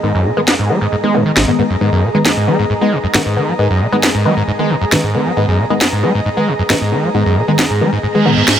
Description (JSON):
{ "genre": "driving peak-time techno", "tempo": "135 BPM", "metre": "4/4", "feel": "straight", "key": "G# minor", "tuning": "A4 = 440 Hz", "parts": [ { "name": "screaming distorted acid line", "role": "riff", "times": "0.0-8.6 s", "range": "G#1 to B3", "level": "-16 LUFS", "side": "equal", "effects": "distortion, wide subtle chorus, digital delay" }, { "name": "filtered dub chord stab", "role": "stabs", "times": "0.0-8.6 s", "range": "D#3 to B3", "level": "-17 LUFS", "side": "left 1 dB", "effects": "phaser, analog chorus, digital delay" }, { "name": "granular cloud pad", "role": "texture", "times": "0.0-8.6 s", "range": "G#4 to A#5", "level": "-20 LUFS", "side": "equal", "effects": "built-in reverb" }, { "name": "electronic snare drum", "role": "drums", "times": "0.5-8.6 s", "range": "none", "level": "-15 LUFS", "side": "equal", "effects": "none" }, { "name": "reverse cymbal", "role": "sound effects", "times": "8.2-8.6 s", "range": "none", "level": "-15 LUFS", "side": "right 5 dB", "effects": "none" } ], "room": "light reverb", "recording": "none", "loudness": "-12 LUFS", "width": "side -9 dB against mid", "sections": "0.0-8.6 A section", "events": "reverse cymbal 8.2-8.6", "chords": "0.0 G#m", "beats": "| 0.03 0.48 0.92 1.37 | 1.81 2.26 2.70 3.15 | 3.59 4.03 4.48 4.92 | 5.37 5.81 6.26 6.70 | 7.14 7.59 8.03 8.48" }